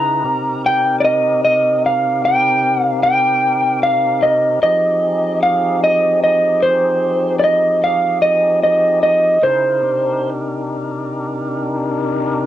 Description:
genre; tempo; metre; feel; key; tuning
blues; 50 BPM (dotted quarters); 12/8; straight; C minor; A4 = 440 Hz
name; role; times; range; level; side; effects
electric slide guitar; melody; 0.0-10.3 s; C5 to Bb5; -13 LUFS; right 1 dB; cassette tape
tonewheel organ; sustained chords; 0.0-12.5 s; C3 to B4; -21 LUFS; left 2 dB; slow rotary speaker, cassette tape
room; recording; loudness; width
moderate studio reverb, RT60 0.6 s; home recording on cassette, nothing above 11.0 kHz; -13 LUFS; side -12 dB against mid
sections
0.0-12.5 A section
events
none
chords
0.0 Cm7; 4.6 Fm9; 9.4 Cm9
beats
1.03 2.23 3.43 | 4.63 5.83 7.03 8.23 | 9.43 10.63 11.83

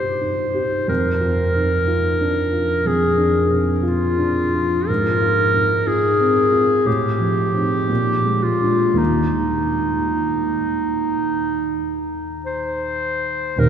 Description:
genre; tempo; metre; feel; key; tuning
classical, romantic duo for clarinet and grand piano; 50-62 BPM; 4/4; rubato; Eb major from 4.9 s; A4 = 438 Hz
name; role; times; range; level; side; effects
clear clarinet; melody; 0.0-13.7 s; Eb4 to C5; -19 LUFS; left 1 dB; none
dark baby grand piano; accompaniment; 0.0-13.7 s; Eb1 to G4; -21 LUFS; right 1 dB; none
room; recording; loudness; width
wet cathedral reverb, RT60 5.2 s; heard from further back in the room; -17 LUFS; side -8 dB against mid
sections
0.0-13.6 A section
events
none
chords
0.0 Cm; 0.9 Fsus4; 4.9 Fm/Ab; 6.9 F7/A; 7.9 Bb7; 9.0 Eb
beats
| 0.89 1.89 2.87 3.85 | 4.88 5.87 6.86 7.90 | 8.99 10.15 11.28 12.46 | 13.58

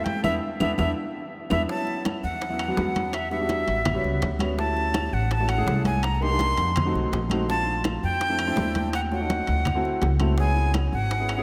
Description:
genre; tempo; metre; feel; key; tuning
Afro-Cuban jazz; 166 BPM; 4/4; straight; unclear; A4 = 441 Hz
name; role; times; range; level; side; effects
breathy bright jazz flute; melody; 0.0-11.4 s; E5 to C6; -30 LUFS; equal; none
warm grand piano; accompaniment; 0.0-11.4 s; F#3 to A4; -32 LUFS; equal; none
upright bass; bass; 0.0-11.4 s; G#1 to F2; -29 LUFS; equal; none
bongos; percussion; 0.1-11.4 s; none; -38 LUFS; equal; none
congas; percussion; 0.1-11.4 s; none; -34 LUFS; equal; none
timbales; percussion; 0.1-11.4 s; none; -40 LUFS; equal; none
claves; percussion; 0.2-11.4 s; none; -43 LUFS; equal; none
room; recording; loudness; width
wet cathedral reverb, RT60 6.2 s; in a vast, echoing space; -25 LUFS; mono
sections
0.0-1.7 A section; 1.7-11.4 B section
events
band accent 0.2-1.7; drum fill 1.0-1.7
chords
0.2 E5; 1.7 A69; 3.1 Em7; 3.9 A13; 4.6 Dmaj9; 6.0 Cm9; 6.8 F7b9; 7.5 Bbmaj9; 8.9 D#m7b5; 9.7 D9; 10.4 C#m7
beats
| 0.24 0.60 0.96 1.33 | 1.69 2.05 2.41 2.78 | 3.14 3.50 3.86 4.22 | 4.58 4.95 5.31 5.67 | 6.03 6.39 6.76 7.12 | 7.48 7.84 8.21 8.57 | 8.93 9.29 9.66 10.02 | 10.38 10.74 11.11

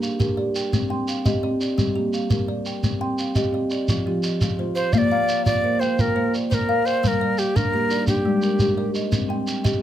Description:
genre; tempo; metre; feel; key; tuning
southern african traditional, mbira-style interlocking cycle; 114 BPM (dotted quarters); 12/8; straight; Bb mixolydian; A4 = 440 Hz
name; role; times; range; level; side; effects
kalimba; arpeggios; 0.0-9.8 s; F3 to G5; -25 LUFS; left 4 dB; none
marimba with soft mallets; arpeggios; 0.0-9.8 s; F3 to C6; -26 LUFS; right 3 dB; none
shekere; percussion; 0.0-9.8 s; none; -25 LUFS; right 1 dB; none
breathy bright Native American-style cedar flute; melody; 4.8-8.9 s; G4 to F5; -22 LUFS; right 1 dB; none
room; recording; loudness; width
light reverb; dry, close 1970s-style studio recording; -19 LUFS; side -11 dB against mid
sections
0.0-4.9 A section; 4.9-9.8 B section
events
none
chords
0.0 Gm; 0.7 Cm; 1.8 Gm; 2.8 Cm; 3.9 Fm; 4.9 Bb; 7.0 Gm; 9.1 Cm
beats
0.20 | 0.73 1.25 1.78 2.31 | 2.83 3.36 3.89 4.41 | 4.94 5.46 5.98 6.51 | 7.03 7.55 8.08 8.60 | 9.12 9.64

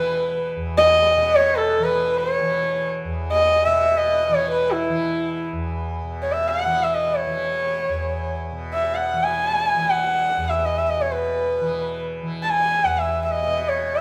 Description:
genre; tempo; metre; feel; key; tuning
indian classical, Hindustani; free time; none; none; E raga bilaval; A4 = 440 Hz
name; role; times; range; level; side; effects
dark sarangi; melody; 0.0-14.0 s; E4 to A5; -21 LUFS; equal; none
tanpura; drone; 0.0-14.0 s; E2 to E3; -31 LUFS; equal; none
room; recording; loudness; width
moderate recital hall reverb, RT60 1.6 s; none; -21 LUFS; mono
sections
0.0-6.0 A section; 6.0-14.0 A section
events
none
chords
none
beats
free time

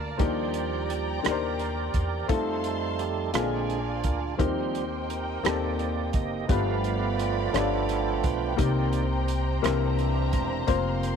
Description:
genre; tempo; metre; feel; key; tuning
slow gospel; 57 BPM (dotted quarters); 6/8; straight; unclear; A4 = 441 Hz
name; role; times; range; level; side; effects
clear upright piano; accompaniment; 0.0-11.2 s; G2 to D5; -30 LUFS; left 12 dB; none
tonewheel organ; sustained chords; 0.0-11.2 s; D3 to F5; -30 LUFS; right 12 dB; overdrive, chorus vibrato, stopped rotary speaker
warm studio string section; sustained chords; 0.0-11.2 s; Eb4 to C6; -36 LUFS; left 2 dB; none
upright bass; bass; 0.0-11.2 s; E1 to F2; -30 LUFS; equal; none
warm soul drum kit; drums; 0.2-11.2 s; hi-hat, kick drum, rim click; -28 LUFS; right 2 dB; none
room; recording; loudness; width
light reverb, small room ambience; 1960s-style stereo with parts hard left and right; -24 LUFS; side -7 dB against mid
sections
0.0-11.2 A section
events
tonewheel organ solo 0.0-11.2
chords
0.2 Ebmaj7; 2.3 F7; 3.3 Bb7; 4.4 Eb6; 6.5 G7; 8.6 Cm7; 9.6 C7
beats
| 0.20 1.25 | 2.29 3.34 | 4.39 5.44 | 6.49 7.54 | 8.58 9.63 | 10.68

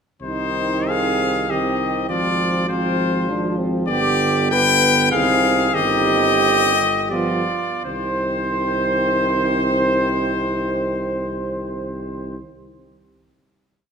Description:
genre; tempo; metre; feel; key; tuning
classical, brass quintet; 78-102 BPM; 3/4; rubato; C minor; A4 = 443 Hz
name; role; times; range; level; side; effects
bright trumpet; melody; 0.2-12.4 s; C5 to G5; -21 LUFS; left 7 dB; none
warm flugelhorn; second line; 0.2-12.4 s; Eb4 to C5; -23 LUFS; right 8 dB; none
clear trombone; accompaniment; 0.2-12.4 s; D3 to F3; -26 LUFS; right 2 dB; none
warm French horn; accompaniment; 0.2-12.4 s; B3 to D4; -26 LUFS; left 2 dB; none
warm bass trombone; bass; 0.2-12.4 s; G1 to C2; -26 LUFS; right 1 dB; none
room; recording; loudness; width
wet recital hall reverb, RT60 1.8 s; minimal, uncompressed stereo recording; -17 LUFS; side -6 dB against mid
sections
0.2-7.9 A section; 7.9-12.2 final chord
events
slowing down 3.0-7.9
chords
0.2 Cm; 2.1 Fm/Ab; 3.3 Dm7b5/Ab; 3.9 G; 5.1 Cm; 5.7 Cm/G; 7.1 G7; 7.9 Cm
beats
| 0.23 0.88 1.50 | 2.10 2.69 3.29 | 3.88 4.52 5.12 | 5.75 6.40 7.11 | 7.85 8.58 9.31 | 10.03 10.74 11.46

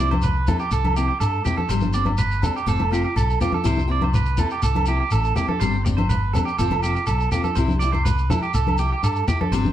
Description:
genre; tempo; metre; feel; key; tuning
highlife guitar band; 123 BPM; 4/4; straight; C major; A4 = 439 Hz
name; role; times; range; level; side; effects
picked steel-string acoustic guitar; accompaniment; 0.0-9.7 s; F3 to A4; -28 LUFS; left 4 dB; none
electric guitar at the edge of break-up; arpeggios; 0.0-9.7 s; G4 to D5; -25 LUFS; right 7 dB; spring reverb
fingered electric bass; bass; 0.0-9.7 s; F1 to G2; -23 LUFS; equal; none
agogo bells; percussion; 0.1-9.7 s; none; -33 LUFS; left 7 dB; none
congas; percussion; 0.1-9.7 s; none; -25 LUFS; left 1 dB; none
shekere; percussion; 0.2-9.7 s; none; -28 LUFS; equal; none
room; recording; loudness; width
moderate stone room reverb, RT60 1.0 s; band playing live in one room; -19 LUFS; side -11 dB against mid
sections
0.0-9.7 A section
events
none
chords
0.0 C; 1.7 Gsus4; 2.7 F; 3.7 C; 5.6 Gsus4; 6.6 F; 7.6 C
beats
0.23 0.72 1.21 | 1.70 2.19 2.68 3.17 | 3.66 4.15 4.63 5.12 | 5.61 6.10 6.59 7.08 | 7.57 8.06 8.55 9.03 | 9.52

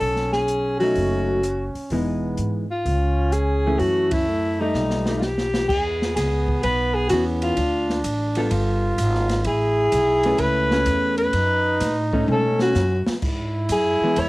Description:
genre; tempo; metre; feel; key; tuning
jazz, small-group swing and bop; 127 BPM; 4/4; swing 68% on 8ths; E major; A4 = 440 Hz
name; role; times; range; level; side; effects
breathy alto saxophone; melody; 0.0-14.3 s; D#4 to C#5; -21 LUFS; left 1 dB; cassette tape
breathy trumpet; second line; 0.0-14.3 s; G3 to F4; -28 LUFS; right 1 dB; cassette tape
upright bass; bass; 0.0-14.3 s; E1 to B2; -25 LUFS; equal; none
open jazz drum kit; drums; 0.0-14.3 s; crash cymbal, hi-hat, kick drum, ride cymbal, rim click, snare drum, toms; -29 LUFS; equal; cassette tape
vintage hollow-body jazz guitar; accompaniment; 0.8-14.3 s; E3 to B4; -24 LUFS; equal; cassette tape
room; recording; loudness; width
little or no reverb; home recording on cassette; -19 LUFS; side -20 dB against mid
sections
0.0-5.7 A section; 5.7-14.3 B section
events
band accent 4.0; drum fill 4.7-5.7, 12.3-13.2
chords
0.0 B7; 1.9 Emaj7; 2.9 C#; 3.8 F#m7; 4.7 Baug7; 5.7 E6; 7.6 Dm; 8.5 G9; 9.5 Amaj9; 11.3 F#m; 12.3 B9; 13.2 E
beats
| 0.02 0.49 0.97 1.44 | 1.91 2.38 2.86 3.33 | 3.80 4.27 4.75 5.22 | 5.69 6.16 6.63 7.11 | 7.58 8.05 8.52 8.99 | 9.46 9.93 10.40 10.88 | 11.35 11.82 12.29 12.76 | 13.23 13.70 14.17

